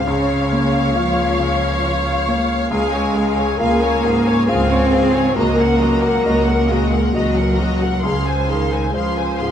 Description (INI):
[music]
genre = cinematic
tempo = 68 BPM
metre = 3/4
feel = rubato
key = Db major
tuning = A4 = 440 Hz
[part]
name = mellow French horn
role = melody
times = 0.0-9.5 s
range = Db4 to C5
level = -24 LUFS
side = left 3 dB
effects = none
[part]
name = rich studio violin section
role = melody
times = 0.0-9.5 s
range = F5 to C6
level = -28 LUFS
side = left 3 dB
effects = none
[part]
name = clear studio violin section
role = second line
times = 0.0-9.5 s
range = Eb5 to Ab5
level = -26 LUFS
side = left 4 dB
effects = none
[part]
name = clear grand piano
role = accompaniment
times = 0.0-9.5 s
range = Db2 to F5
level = -22 LUFS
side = left 2 dB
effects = none
[part]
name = rich studio viola section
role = accompaniment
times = 0.0-9.5 s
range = Gb4 to Db5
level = -24 LUFS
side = equal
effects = none
[part]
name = clear studio double bass section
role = bass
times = 0.0-9.5 s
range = Db2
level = -22 LUFS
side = right 1 dB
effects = none
[part]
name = rich studio cello section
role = bass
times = 0.0-9.5 s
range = Db3 to C4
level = -20 LUFS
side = right 2 dB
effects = none
[sound]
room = moderate concert hall reverb, RT60 1.9 s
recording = minimal, uncompressed stereo recording, vinyl crackle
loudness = -15 LUFS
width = side -9 dB against mid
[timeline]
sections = 0.0-9.5 A section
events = none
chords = 0.1 Bbm/Db; 2.7 Db; 5.4 Ebm/Db; 8.0 Fm/Db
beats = | 0.07 0.96 1.84 | 2.71 3.59 4.48 | 5.36 6.25 7.14 | 8.03 8.94